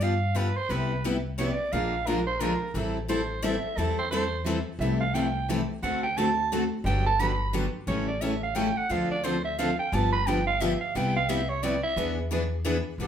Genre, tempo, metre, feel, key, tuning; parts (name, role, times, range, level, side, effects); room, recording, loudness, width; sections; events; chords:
acoustic string swing (jazz manouche); 176 BPM; 3/4; swing 61% on 8ths; A minor; A4 = 440 Hz
growling soprano saxophone; second line; 0.0-13.1 s; B3 to B5; -29 LUFS; right 4 dB
picked steel-string acoustic guitar; accompaniment; 0.0-13.1 s; C3 to A4; -31 LUFS; left 5 dB
upright bass; bass; 0.0-13.1 s; G1 to G2; -31 LUFS; equal
picked steel-string acoustic guitar; accompaniment; 0.7-13.1 s; C3 to B4; -31 LUFS; right 1 dB
growling clarinet; melody; 13.0-13.1 s; G4; -38 LUFS; right 4 dB
moderate large studio reverb, RT60 0.8 s; band playing live in one room; -25 LUFS; side -8 dB against mid
0.0-4.8 A section; 4.8-13.0 A section
soprano saxophone solo 0.0-13.0
0.0 G7; 0.7 Cmaj7; 1.7 Bb7; 2.8 Am7; 4.8 C6; 5.8 D7; 6.9 Gmaj7; 7.9 A7; 8.9 Dm7; 9.9 G7; 10.9 Cmaj7; 12.0 E7